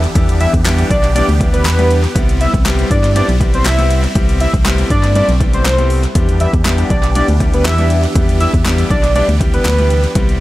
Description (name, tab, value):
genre	dance-pop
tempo	120 BPM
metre	4/4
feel	straight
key	E minor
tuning	A4 = 440 Hz
part	supersaw chords	sustained chords	0.0-10.4 s	E3 to G4	-23 LUFS	equal	phaser, sidechain pumping
part	organ-like FM bass	bass	0.0-10.4 s	B1 to G2	-14 LUFS	equal	sidechain pumping
part	deep house drum kit	drums	0.0-10.4 s	handclaps, hi-hat, kick drum, snare drum	-16 LUFS	equal	tape echo
part	clear concert grand piano	accompaniment	0.1-10.4 s	G3 to G4	-21 LUFS	left 2 dB	sidechain pumping, tape echo
part	fat analog lead	melody	0.4-10.0 s	B4 to E5	-18 LUFS	equal	sidechain pumping, tape echo
part	group handclap	percussion	0.7-9.8 s	none	barely audible	none	none
room	digital ambience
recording	echo-heavy mix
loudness	-11 LUFS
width	side -16 dB against mid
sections	0.0-10.4 A section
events	none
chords	0.0 Em7; 2.2 Cmaj7; 6.2 Em7